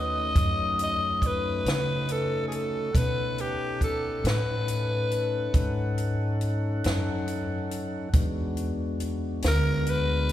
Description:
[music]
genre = slow blues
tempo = 46 BPM (dotted quarters)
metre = 12/8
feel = straight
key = unclear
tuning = A4 = 443 Hz
[part]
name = growling tenor saxophone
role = melody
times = 0.0-10.3 s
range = G4 to D#5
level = -28 LUFS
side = left 2 dB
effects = none
[part]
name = tonewheel organ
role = sustained chords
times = 0.0-10.3 s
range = G#3 to F#5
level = -34 LUFS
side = left 1 dB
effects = slow rotary speaker
[part]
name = upright bass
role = bass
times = 0.0-10.3 s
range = D2 to C#3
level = -29 LUFS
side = equal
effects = none
[part]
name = compact cocktail drum kit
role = drums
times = 0.4-10.3 s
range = hi-hat, kick drum, snare drum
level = -29 LUFS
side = equal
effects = none
[sound]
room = wet church reverb, RT60 3.5 s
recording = recorded in a church or concert hall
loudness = -24 LUFS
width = side -12 dB against mid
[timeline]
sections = 0.0-10.3 A section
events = none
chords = 0.0 B7; 8.1 E7

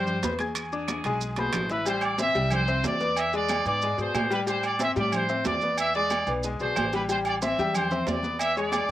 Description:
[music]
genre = latin, salsa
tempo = 184 BPM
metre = 4/4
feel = straight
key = A minor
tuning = A4 = 440 Hz
[part]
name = bright trumpet section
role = melody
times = 0.0-8.9 s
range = G#4 to E5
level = -27 LUFS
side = right 1 dB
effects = none
[part]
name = bright upright piano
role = accompaniment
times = 0.0-8.9 s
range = B2 to G#6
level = -29 LUFS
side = left 3 dB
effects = none
[part]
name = upright bass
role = bass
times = 0.0-8.9 s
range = A1 to A2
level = -33 LUFS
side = equal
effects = none
[part]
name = congas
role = percussion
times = 0.1-8.9 s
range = none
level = -35 LUFS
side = equal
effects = none
[part]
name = maracas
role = percussion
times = 0.1-8.9 s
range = none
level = -38 LUFS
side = right 5 dB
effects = none
[part]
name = timbales and agogo bells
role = percussion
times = 0.2-8.9 s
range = none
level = -32 LUFS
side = right 5 dB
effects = slapback echo
[part]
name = claves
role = percussion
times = 0.6-8.9 s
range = none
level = -39 LUFS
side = left 3 dB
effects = none
[sound]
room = little or no reverb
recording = recorded outdoors, with no room sound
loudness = -24 LUFS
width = side -13 dB against mid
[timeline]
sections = 0.0-1.9 A section; 1.9-8.9 B section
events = drum fill 1.4-1.9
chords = 0.0 Cmaj7; 0.6 E7; 1.9 Am7; 3.2 E7; 4.5 Am7; 5.8 E7; 7.1 Am7; 8.4 E7

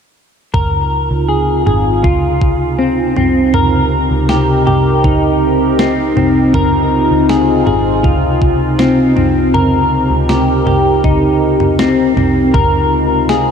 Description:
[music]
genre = dream pop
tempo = 80 BPM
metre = 4/4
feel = straight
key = Db lydian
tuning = A4 = 440 Hz
[part]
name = phased analog pad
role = sustained chords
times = 0.9-13.5 s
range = C3 to Bb4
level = -15 LUFS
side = equal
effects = phaser, chorus
[part]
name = semi-hollow electric guitar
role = arpeggios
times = 0.5-13.5 s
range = C4 to Bb4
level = -14 LUFS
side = left 2 dB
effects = analog chorus, diffuse ambient delay
[part]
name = vintage muted picked electric bass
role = bass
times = 0.5-13.5 s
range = Ab1 to Db2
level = -17 LUFS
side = equal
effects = none
[part]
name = clean 12-bit digital drum machine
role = drums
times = 0.5-13.5 s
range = kick drum, snare drum, toms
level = -19 LUFS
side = right 1 dB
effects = overdrive
[sound]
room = wet huge ambient reverb, RT60 8.2 s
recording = dreamy mix soaked in reverb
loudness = -10 LUFS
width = side -7 dB against mid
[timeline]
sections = 0.5-12.5 A section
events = none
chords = 0.5 Dbmaj9; 3.5 Cm7; 6.5 Dbmaj9; 9.5 Cm7; 12.5 Dbmaj9

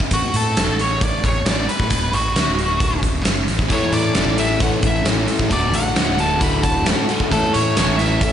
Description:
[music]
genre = quiet-loud alternative rock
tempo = 133 BPM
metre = 4/4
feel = straight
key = D major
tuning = A4 = 439 Hz
[part]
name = big rock drum kit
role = drums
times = 0.0-8.3 s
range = hi-hat, kick drum, snare drum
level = -20 LUFS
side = equal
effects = none
[part]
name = nasal lead guitar with a parked wah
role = melody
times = 0.1-8.3 s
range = F#4 to B5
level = -22 LUFS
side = equal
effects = overdrive, slapback echo
[part]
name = fuzz fingered electric bass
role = bass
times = 0.1-8.3 s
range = D1 to A2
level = -23 LUFS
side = equal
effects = overdrive
[part]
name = fingerpicked plugged-in steel-string acoustic guitar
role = arpeggios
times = 3.7-8.3 s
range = D2 to A4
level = -24 LUFS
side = left 4 dB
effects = slapback echo
[part]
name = crunchy overdriven guitar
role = riff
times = 3.7-8.3 s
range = D2 to A3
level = -22 LUFS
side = right 1 dB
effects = slapback echo
[sound]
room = moderate lush hall reverb, RT60 1.7 s, small room ambience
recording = big arena sound, nothing above 10.5 kHz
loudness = -16 LUFS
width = side -9 dB against mid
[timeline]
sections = 0.0-8.3 A section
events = none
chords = 0.1 A5; 1.9 D; 3.7 A; 5.5 D; 7.3 A

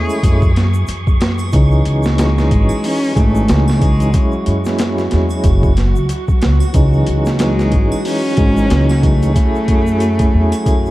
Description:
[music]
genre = trip hop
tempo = 92 BPM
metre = 4/4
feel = swing 58% on 16ths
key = C# minor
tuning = A4 = 440 Hz
[part]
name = clear cello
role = melody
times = 0.0-10.9 s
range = G#3 to G#4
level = -20 LUFS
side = equal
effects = dub echo
[part]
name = tonewheel organ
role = accompaniment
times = 0.0-10.9 s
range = E3 to G#4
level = -20 LUFS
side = equal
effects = stopped rotary speaker, tremolo
[part]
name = string machine, cellos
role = sustained chords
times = 0.0-10.9 s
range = E3 to F#4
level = -26 LUFS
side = equal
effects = ensemble chorus
[part]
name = upright bass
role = bass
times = 0.0-10.9 s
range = F#1 to F#2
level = -15 LUFS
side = equal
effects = none
[part]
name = wind-like tuned noise texture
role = texture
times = 0.0-10.9 s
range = C#6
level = -33 LUFS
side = right 3 dB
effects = built-in reverb
[part]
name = egg shaker and triangle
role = percussion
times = 0.1-10.9 s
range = none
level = -38 LUFS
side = right 4 dB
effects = none
[part]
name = boom bap sampler-style drum kit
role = drums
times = 0.2-10.8 s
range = hi-hat, kick drum, snare drum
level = -16 LUFS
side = equal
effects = overdrive
[sound]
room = little or no reverb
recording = dark, warm production, vinyl crackle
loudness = -12 LUFS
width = side -17 dB against mid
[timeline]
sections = 0.0-10.9 A section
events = none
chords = 0.0 F#m9; 1.5 C#madd9; 4.1 F#sus2; 6.7 C#madd9; 9.4 F#m9

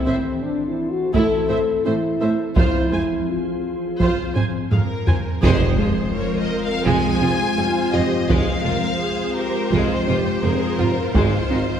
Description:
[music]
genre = cinematic, hybrid orchestral and electronic film score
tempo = 84 BPM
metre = 4/4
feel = straight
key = F minor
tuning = A4 = 440 Hz
[part]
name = warm symphonic viola section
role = accompaniment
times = 0.0-11.8 s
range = E4 to Ab5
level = -27 LUFS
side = right 2 dB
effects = none
[part]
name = glassy FM pad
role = sustained chords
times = 0.0-11.8 s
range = Eb3 to C5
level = -26 LUFS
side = left 1 dB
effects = ensemble chorus, built-in reverb
[part]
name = mellow French horn section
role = sustained chords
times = 0.0-11.8 s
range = C4 to A4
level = -25 LUFS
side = left 2 dB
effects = none
[part]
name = soft round pluck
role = arpeggios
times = 0.1-11.7 s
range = F3 to A4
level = -28 LUFS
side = right 4 dB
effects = none
[part]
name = rich symphonic cello section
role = bass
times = 0.1-11.6 s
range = F2 to A2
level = -27 LUFS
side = right 3 dB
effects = none
[part]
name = taiko ensemble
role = drums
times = 1.1-11.8 s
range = none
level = -23 LUFS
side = right 1 dB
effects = none
[part]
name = warm symphonic violin section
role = melody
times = 4.7-11.8 s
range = Bb4 to Ab5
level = -26 LUFS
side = left 3 dB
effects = none
[part]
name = clear chamber violin section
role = second line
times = 5.4-11.8 s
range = Ab3 to C5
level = -27 LUFS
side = left 2 dB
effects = none
[part]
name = clear tuba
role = bass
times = 5.4-11.6 s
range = F1 to Ab1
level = -29 LUFS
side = right 3 dB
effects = none
[part]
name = warm symphonic double bass section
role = bass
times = 5.4-11.6 s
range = F1 to Ab1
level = -27 LUFS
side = right 3 dB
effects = none
[part]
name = impact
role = sound effects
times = 5.4-8.3 s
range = none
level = -28 LUFS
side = right 1 dB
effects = none
[sound]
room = wet concert hall reverb, RT60 2.1 s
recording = recorded in a church or concert hall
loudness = -18 LUFS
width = side -8 dB against mid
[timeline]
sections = 0.0-5.4 A section; 5.4-11.8 A section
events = drum fill 4.4-5.4; band accent 5.4-6.1; impact 5.4-8.3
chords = 0.0 Am; 2.6 Fm; 11.1 Ab

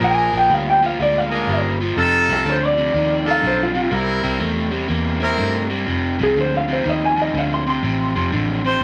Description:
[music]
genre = electric blues shuffle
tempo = 123 BPM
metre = 4/4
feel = swing 66% on 8ths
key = F mixolydian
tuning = A4 = 440 Hz
[part]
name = electric guitar through a small old amp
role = melody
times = 0.0-8.6 s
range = F4 to C6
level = -21 LUFS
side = equal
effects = none
[part]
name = overdriven electric guitar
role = riff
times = 0.0-8.8 s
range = F2 to Bb3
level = -24 LUFS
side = equal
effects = none
[part]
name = brilliant horn section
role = stabs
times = 0.0-5.6 s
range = C4 to Bb4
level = -23 LUFS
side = equal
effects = none
[part]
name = vintage muted fingered electric bass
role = bass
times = 0.0-8.8 s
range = F1 to G2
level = -27 LUFS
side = equal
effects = none
[part]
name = clear harmonica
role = second line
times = 8.7-8.8 s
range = C5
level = -20 LUFS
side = equal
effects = overdrive
[sound]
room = moderate studio reverb, RT60 0.7 s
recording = vinyl crackle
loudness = -19 LUFS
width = mono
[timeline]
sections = 0.0-5.9 A section; 5.9-8.8 B section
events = clean electric guitar solo 0.0-5.9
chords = 0.0 Bb7; 2.0 F7; 3.9 C7; 5.9 F7

